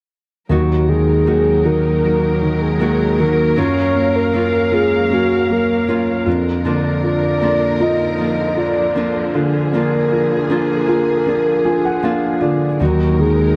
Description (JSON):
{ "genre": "pop", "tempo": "78 BPM", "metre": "4/4", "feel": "straight", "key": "Eb harmonic minor", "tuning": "A4 = 440 Hz", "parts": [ { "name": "soft octave-layered synth lead", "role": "melody", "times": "0.5-13.6 s", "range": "Gb4 to Eb5", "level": "-21 LUFS", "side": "equal", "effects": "chorus, phaser" }, { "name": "warm concert grand piano", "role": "accompaniment", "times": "0.5-13.6 s", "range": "Eb2 to Ab5", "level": "-20 LUFS", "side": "equal", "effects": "none" }, { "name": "warm studio string section", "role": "sustained chords", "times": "0.5-13.6 s", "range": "D3 to F5", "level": "-26 LUFS", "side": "equal", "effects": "none" }, { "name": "nylon-string guitar", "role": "arpeggios", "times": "0.5-13.6 s", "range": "Eb3 to Gb4", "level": "-25 LUFS", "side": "equal", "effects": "none" } ], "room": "light reverb", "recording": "dark, warm production", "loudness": "-16 LUFS", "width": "mono", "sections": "0.5-13.6 A section", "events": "grand piano fill 11.3-12.8", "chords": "0.5 Ebm; 3.6 Gbmaj7; 6.3 Bb/F; 12.8 Ebm" }